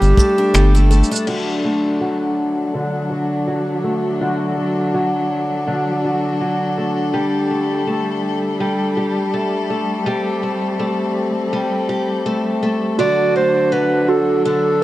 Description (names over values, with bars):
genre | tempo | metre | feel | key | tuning
folktronica | 82 BPM | 4/4 | swing 56% on 16ths | unclear | A4 = 440 Hz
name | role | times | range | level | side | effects
clear clarinet | melody | 0.0-0.9, 13.0-14.8 s | G4 to D5 | -18 LUFS | equal | tape echo
picked twelve-string acoustic guitar | arpeggios | 0.0-14.8 s | D3 to G4 | -20 LUFS | equal | low-pass filter, tape echo
round analog bass | bass | 0.0-1.0 s | G1 | -11 LUFS | equal | none
lo-fi sampler-style drum kit | drums | 0.0-1.4 s | cabasa, crash cymbal, finger snaps | -26 LUFS | equal | overdrive
rich string quartet | sustained chords | 1.3-14.8 s | F#3 to A4 | -22 LUFS | left 2 dB | none
toy piano | second line | 13.0-14.4 s | F#4 | -21 LUFS | right 8 dB | tape echo
room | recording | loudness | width
studio reverb | dry, close 1970s-style studio recording | -16 LUFS | side -16 dB against mid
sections
0.0-1.3 A section; 1.3-14.8 B section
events
band accent 0.5-0.9; filter sweep on twelve-string acoustic guitar 1.3-14.8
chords
0.0 Gsus2; 1.3 D; 7.1 Gsus2; 13.0 D